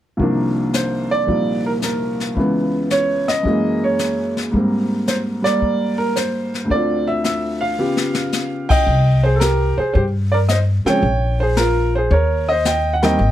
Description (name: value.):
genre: jazz piano trio.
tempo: 111 BPM.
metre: 4/4.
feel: swing 69% on 8ths.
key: C minor.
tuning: A4 = 440 Hz.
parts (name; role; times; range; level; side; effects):
warm upright piano; melody; 0.2-13.3 s; C2 to G5; -17 LUFS; right 1 dB; none.
jazz brush drum kit; drums; 0.2-13.3 s; brushed snare drum, crash cymbal, hi-hat, kick drum, snare drum; -22 LUFS; left 3 dB; none.
upright bass; bass; 8.9-13.3 s; Ab1 to G2; -17 LUFS; left 1 dB; none.
room: light reverb.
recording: none.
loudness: -16 LUFS.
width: side -12 dB against mid.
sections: 0.2-8.9 A section; 8.9-13.3 B section.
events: drum fill 7.8-8.3.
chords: 0.2 Cm11; 2.4 Dbm7; 3.5 F#9; 4.5 Abmaj9; 6.7 Dm7; 7.8 Db7#11; 8.9 C5; 11.0 Bbm7; 12.1 Eb6.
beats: | 0.19 0.74 1.28 1.82 | 2.37 2.91 3.45 3.99 | 4.54 5.08 5.62 6.16 | 6.70 7.24 7.78 8.33 | 8.87 9.41 9.95 10.49 | 11.03 11.57 12.11 12.65 | 13.19.